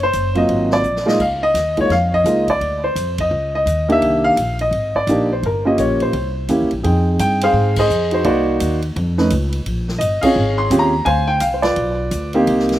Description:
jazz piano trio; 170 BPM; 4/4; swing 62% on 8ths; C minor, F minor from 6.8 s; A4 = 440 Hz
warm baby grand piano; melody; 0.0-12.8 s; Eb3 to C6; -16 LUFS; equal; slapback echo
upright bass; bass; 0.0-12.8 s; F#1 to Ab2; -21 LUFS; equal
swinging big-band drum kit; drums; 0.0-12.8 s; crash cymbal, hi-hat, kick drum, ride cymbal, snare drum; -31 LUFS; equal
little or no reverb; recorded outdoors, with no room sound; -15 LUFS; side -13 dB against mid
0.0-6.8 A section; 6.8-12.8 B section
drum fill 0.8-1.2; band accent 3.1, 7.7, 10.2
0.5 Ab13; 1.2 Db69; 2.6 Dm7; 3.3 Dbsus2; 4.0 Cm7; 5.4 Gm7b5; 6.1 C7b9; 6.8 Fm7; 8.3 Cm7b5; 9.0 F(#5, no3); 9.7 Bbm7; 11.1 Fm69; 11.8 G7 (rootless)
0.14 0.49 0.85 | 1.20 1.55 1.91 2.26 | 2.61 2.96 3.32 3.67 | 4.02 4.38 4.73 5.08 | 5.43 5.79 6.14 6.49 | 6.84 7.19 7.55 7.90 | 8.25 8.60 8.96 9.31 | 9.66 10.01 10.36 10.72 | 11.07 11.42 11.77 12.13 | 12.48

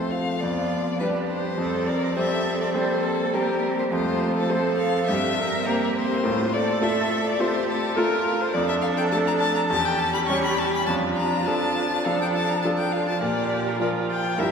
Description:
quick classical-period movement for piano quartet; 103 BPM; 4/4; straight; F major, D minor from 8.5 s; A4 = 440 Hz
rich violin; melody; 0.0-14.5 s; A4 to C#6; -26 LUFS; left 4 dB
bright grand piano; accompaniment; 0.0-14.5 s; E2 to C#5; -25 LUFS; equal
warm viola; accompaniment; 0.0-14.5 s; A3 to Bb4; -30 LUFS; right 2 dB
rich cello; second line; 0.4-14.5 s; F4 to Bb4; -29 LUFS; right 4 dB
wet cathedral reverb, RT60 4.4 s; recorded in a church or concert hall; -21 LUFS; side -6 dB against mid
0.0-14.5 A section
0.4 G7/F; 1.6 C5/F; 3.9 F; 5.1 C7/G; 6.2 F/A; 8.5 Dm/F; 9.7 C#dim/E; 10.9 Dm/F; 13.2 Bb5
0.42 1.01 | 1.59 2.17 2.75 3.34 | 3.92 4.50 5.08 5.66 | 6.23 6.81 7.39 7.96 | 8.54 9.12 9.71 10.29 | 10.88 11.47 12.05 12.64 | 13.22 13.80 14.39

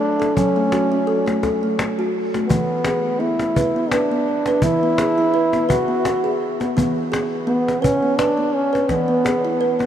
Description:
world meditative, meditative tuned percussion; 84 BPM; 3/4; swing 55% on 16ths; A4 = 440 Hz
warm trombone; melody; 0.0-9.9 s; B3 to F#4; -20 LUFS; equal
kalimba; arpeggios; 0.0-9.9 s; E3 to B4; -20 LUFS; right 1 dB; diffuse ambient delay
cajon; percussion; 0.2-9.9 s; -26 LUFS; left 2 dB
wet huge ambient reverb, RT60 8.7 s; dreamy mix soaked in reverb; -17 LUFS; side -10 dB against mid
0.0-9.9 A section
0.0 F#m; 2.5 E
| 0.36 1.07 1.78 | 2.49 3.20 3.91 | 4.62 5.33 6.04 | 6.76 7.47 8.18 | 8.89 9.61

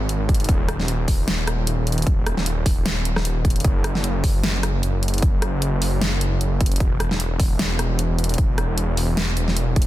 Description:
future bass; 152 BPM; 4/4; swing 56% on 16ths, half-time; A4 = 439 Hz
wide detuned saw bass; bass; 0.0-9.9 s; D#1 to G#1; -22 LUFS; equal; chorus, sidechain pumping
big-room dance drum kit; drums; 0.1-9.9 s; hi-hat, rim click, snare drum; -25 LUFS; equal
electronic kick drum; drums; 0.3-9.9 s; -19 LUFS; equal
little or no reverb; dense, heavily limited modern master; -19 LUFS; side -15 dB against mid
0.0-9.9 A section
0.09 | 0.49 0.88 1.28 1.67 | 2.07 2.46 2.86 3.25 | 3.65 4.04 4.43 4.83 | 5.22 5.62 6.01 6.41 | 6.80 7.20 7.59 7.99 | 8.38 8.78 9.17 9.57

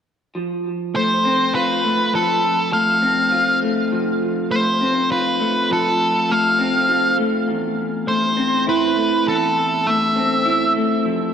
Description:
rock; 101 BPM; 3/4; straight; A4 = 442 Hz
electric guitar through a small old amp; arpeggios; 0.3-11.3 s; E2 to F4; -20 LUFS; left 1 dB; wide subtle chorus, diffuse ambient delay
octave-fuzz lead guitar; melody; 1.0-10.7 s; A4 to F5; -18 LUFS; equal; distortion, diffuse ambient delay
wet plate reverb, RT60 2.6 s; dreamy mix soaked in reverb; -16 LUFS; side -8 dB against mid
0.4-11.3 A section
0.4 F; 7.5 Am/E
| 0.35 0.94 1.54 | 2.13 2.73 3.32 | 3.92 4.51 5.10 | 5.70 6.29 6.89 | 7.48 8.08 8.67 | 9.27 9.86 10.46 | 11.05

